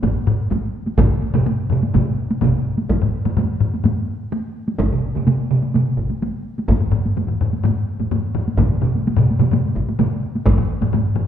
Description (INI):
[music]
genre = japanese traditional, taiko drum ensemble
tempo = 126 BPM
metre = 4/4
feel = straight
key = none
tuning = none
[part]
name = taiko ensemble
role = percussion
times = 0.0-11.1 s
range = none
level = -24 LUFS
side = right 1 dB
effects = none
[part]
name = taiko ensemble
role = percussion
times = 0.0-11.3 s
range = none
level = -20 LUFS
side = left 2 dB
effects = none
[part]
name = taiko ensemble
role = percussion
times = 0.0-10.6 s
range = none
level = -21 LUFS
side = equal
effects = none
[part]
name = taiko ensemble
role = percussion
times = 1.0-10.1 s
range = none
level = -20 LUFS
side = right 2 dB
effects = none
[sound]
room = wet recital hall reverb, RT60 1.5 s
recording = recorded in a church or concert hall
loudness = -17 LUFS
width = side -9 dB against mid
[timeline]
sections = 0.0-2.9 A section; 2.9-11.3 B section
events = none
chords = none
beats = 0.03 0.51 | 0.99 1.46 1.94 2.42 | 2.90 3.37 3.85 4.32 | 4.80 5.27 5.75 6.22 | 6.70 7.17 7.64 8.12 | 8.59 9.06 9.53 10.00 | 10.47 10.94